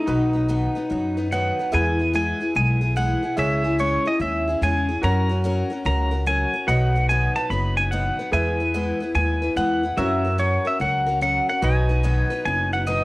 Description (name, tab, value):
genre	country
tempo	145 BPM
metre	4/4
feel	swing 65% on 8ths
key	E major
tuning	A4 = 442 Hz
part	pedal steel guitar	melody	0.0-13.0 s	D#4 to B5	-23 LUFS	equal	cassette tape
part	bright grand piano	accompaniment	0.0-13.0 s	D#4 to E5	-33 LUFS	right 2 dB	cassette tape
part	picked steel-string acoustic guitar	accompaniment	0.0-13.0 s	B2 to B4	-26 LUFS	left 2 dB	cassette tape
part	upright bass	bass	0.1-13.0 s	F#1 to F#2	-23 LUFS	equal	none
room	moderate studio reverb, RT60 0.6 s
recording	home recording on cassette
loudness	-19 LUFS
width	side -20 dB against mid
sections	0.0-1.7 A section; 1.7-13.0 B section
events	none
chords	0.1 B; 1.7 E; 3.4 C#m; 5.0 F#; 6.7 B; 8.3 E; 10.0 F#; 11.6 B